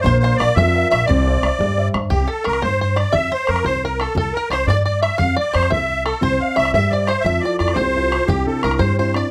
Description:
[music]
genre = celtic folk, Celtic jig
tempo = 116 BPM (dotted quarters)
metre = 6/8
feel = straight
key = C mixolydian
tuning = A4 = 444 Hz
[part]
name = musette accordion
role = melody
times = 0.0-9.3 s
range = G4 to F5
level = -22 LUFS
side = equal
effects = none
[part]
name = bluegrass banjo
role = second line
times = 0.0-9.3 s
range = G4 to F5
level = -28 LUFS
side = equal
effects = none
[part]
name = warm baby grand piano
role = accompaniment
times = 0.0-2.1, 6.2-9.3 s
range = C3 to F5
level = -25 LUFS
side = equal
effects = none
[part]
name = upright bass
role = bass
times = 0.0-9.2 s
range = Bb1 to G2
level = -23 LUFS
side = equal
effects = none
[part]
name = bodhran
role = percussion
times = 0.1-9.2 s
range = none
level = -27 LUFS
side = equal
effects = none
[sound]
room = moderate studio reverb, RT60 0.6 s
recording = none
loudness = -18 LUFS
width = mono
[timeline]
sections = 0.0-2.1 A section; 2.1-9.3 B section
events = none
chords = 0.1 Bb; 1.1 Cadd9; 2.1 C5; 3.1 F5; 4.2 C5; 5.2 F5; 6.2 Cadd9; 7.2 Fmaj7; 8.3 Cadd9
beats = | 0.05 0.56 | 1.08 1.59 | 2.10 2.62 | 3.13 3.65 | 4.16 4.67 | 5.19 5.71 | 6.22 6.74 | 7.25 7.76 | 8.28 8.79

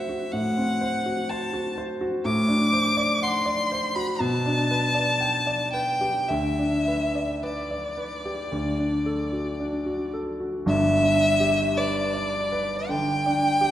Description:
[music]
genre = classical, romantic duo for violin and grand piano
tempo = 52-63 BPM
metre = 4/4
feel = rubato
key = G major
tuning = A4 = 440 Hz
[part]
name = clear violin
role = melody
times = 0.0-13.7 s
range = D5 to D6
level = -25 LUFS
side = left 1 dB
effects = none
[part]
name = warm grand piano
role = accompaniment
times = 0.0-13.7 s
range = G1 to G5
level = -25 LUFS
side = equal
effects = none
[sound]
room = wet recital hall reverb, RT60 1.8 s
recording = dark, warm production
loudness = -22 LUFS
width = side -12 dB against mid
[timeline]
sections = 0.0-10.7 A section; 10.7-13.7 B section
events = none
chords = 0.0 F#dim/A; 2.2 D7/A; 4.2 G/B; 6.3 G/D (rootless); 8.5 D; 10.7 G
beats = 0.33 1.29 | 2.25 3.22 4.20 5.19 | 6.28 7.42 8.52 9.60 | 10.68 11.77 12.90

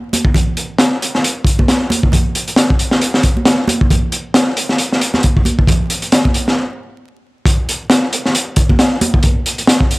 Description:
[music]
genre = breakbeat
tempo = 135 BPM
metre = 4/4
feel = swing 57% on 16ths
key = none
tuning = none
[part]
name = crunchy breakbeat drum kit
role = drums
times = 0.1-10.0 s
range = hi-hat, kick drum, snare drum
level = -12 LUFS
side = equal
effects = none
[part]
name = congas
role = percussion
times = 0.1-9.1 s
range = none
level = -20 LUFS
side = right 2 dB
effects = none
[sound]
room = small room ambience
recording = vinyl crackle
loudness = -12 LUFS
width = side -22 dB against mid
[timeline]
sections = 0.0-7.5 A section; 7.5-10.0 B section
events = stop 6.6-7.5; drop 7.5-10.0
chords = none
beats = | 0.35 0.79 1.24 1.68 | 2.12 2.57 3.01 3.46 | 3.90 4.35 4.79 5.24 | 5.68 6.12 6.57 7.01 | 7.46 7.90 8.35 8.79 | 9.23 9.68

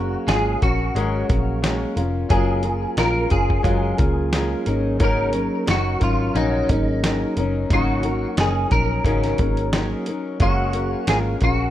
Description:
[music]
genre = indie pop, bedroom pop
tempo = 89 BPM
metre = 4/4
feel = swing 55% on 16ths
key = F# major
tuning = A4 = 440 Hz
[part]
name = clean electric guitar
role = melody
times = 0.0-11.7 s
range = D#4 to A#4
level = -25 LUFS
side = equal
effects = ensemble chorus
[part]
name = fingerpicked steel-string acoustic guitar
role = accompaniment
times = 0.0-11.7 s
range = G#2 to A#4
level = -24 LUFS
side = left 3 dB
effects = lush chorus, warbly pitch drift
[part]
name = mellow tonewheel organ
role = accompaniment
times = 0.0-11.4 s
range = F#3 to E#5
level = -29 LUFS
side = right 3 dB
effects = slow rotary speaker, cassette tape
[part]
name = vintage muted picked electric bass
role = bass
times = 0.0-11.7 s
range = E#1 to C#2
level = -24 LUFS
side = equal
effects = none
[part]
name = dusty soul sampler-style drum kit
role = drums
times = 0.3-11.6 s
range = hi-hat, kick drum, snare drum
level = -22 LUFS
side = equal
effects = none
[part]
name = phased analog pad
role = sustained chords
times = 10.4-11.7 s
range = G#4 to A#5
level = -39 LUFS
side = right 1 dB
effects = none
[sound]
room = little or no reverb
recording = rough home demo mix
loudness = -18 LUFS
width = side -12 dB against mid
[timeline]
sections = 0.0-11.7 A section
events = none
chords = 0.0 F#maj9; 4.7 G#9sus4; 10.4 F#maj9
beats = 0.29 0.96 1.64 | 2.31 2.98 3.66 4.33 | 5.01 5.68 6.36 7.03 | 7.70 8.38 9.05 9.73 | 10.40 11.07

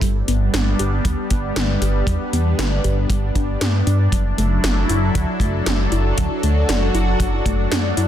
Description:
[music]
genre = synthwave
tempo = 117 BPM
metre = 4/4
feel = straight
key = unclear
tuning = A4 = 440 Hz
[part]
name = lush unison pad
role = sustained chords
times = 0.0-8.1 s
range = F#3 to A4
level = -23 LUFS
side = equal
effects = chorus, phaser, sidechain pumping
[part]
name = warbly dusty pluck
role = arpeggios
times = 0.0-8.1 s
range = F#3 to G4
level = -27 LUFS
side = equal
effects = chorus, digital delay
[part]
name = chorused synth bass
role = bass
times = 0.0-8.1 s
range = F#1 to G2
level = -19 LUFS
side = equal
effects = tube saturation
[part]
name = 80s electronic pad drums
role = drums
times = 0.0-8.1 s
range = hi-hat, snare drum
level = -25 LUFS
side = left 1 dB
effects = overdrive
[part]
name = kick drum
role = drums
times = 0.0-7.6 s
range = none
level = -21 LUFS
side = equal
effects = none
[sound]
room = light reverb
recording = dense, heavily limited modern master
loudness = -16 LUFS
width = side -10 dB against mid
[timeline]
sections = 0.0-8.1 A section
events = filter sweep on synth arpeggio sound 0.0-8.1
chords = 0.0 G; 4.1 Dadd9/F#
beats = | 0.02 0.54 1.05 1.56 | 2.08 2.59 3.10 3.61 | 4.13 4.64 5.15 5.67 | 6.18 6.69 7.20 7.72

